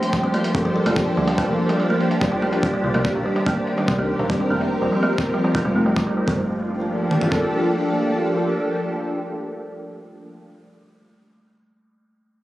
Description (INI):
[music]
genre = IDM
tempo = 144 BPM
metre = 4/4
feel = straight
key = G minor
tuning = A4 = 436 Hz
[part]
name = soft string machine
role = sustained chords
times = 0.0-10.4 s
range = Eb3 to Bb4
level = -22 LUFS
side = equal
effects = phaser, ensemble chorus
[part]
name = electronic hi-hat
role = drums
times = 0.0-6.3 s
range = none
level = -34 LUFS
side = equal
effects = overdrive, low-pass filter on hats, low-pass filter on snare, low-pass filter on room
[part]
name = flickering grainy texture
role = texture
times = 0.0-6.3 s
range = C5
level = -32 LUFS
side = right 1 dB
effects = built-in reverb
[part]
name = kalimba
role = arpeggios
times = 0.1-6.5 s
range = G3 to Bb3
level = -23 LUFS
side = right 1 dB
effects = low-pass filter, dub echo
[part]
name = jungle sampler-style drum kit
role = drums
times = 0.1-7.4 s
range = kick drum, toms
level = -25 LUFS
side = equal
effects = overdrive
[part]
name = metallic FM bass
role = bass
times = 0.5-7.5 s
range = D1 to D2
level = -29 LUFS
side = equal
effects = none
[sound]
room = moderate lush hall reverb, RT60 1.7 s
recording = recorded on a phone in the room, studio ambience, compression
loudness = -18 LUFS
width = side -15 dB against mid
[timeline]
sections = 0.0-6.3 A section; 6.3-9.6 B section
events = filter sweep on drum 0.0-6.3; filter sweep on FM bass 0.0-6.3; filter sweep on kalimba 0.0-6.3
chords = 0.0 Gm9; 2.9 Cm9; 4.6 F9sus4; 6.3 Gm9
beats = 0.03 0.44 0.86 | 1.28 1.69 2.11 2.53 | 2.94 3.36 3.78 4.19 | 4.61 5.03 5.44 5.86 | 6.28 6.69 7.11 7.53 | 7.94 8.36 8.78 9.19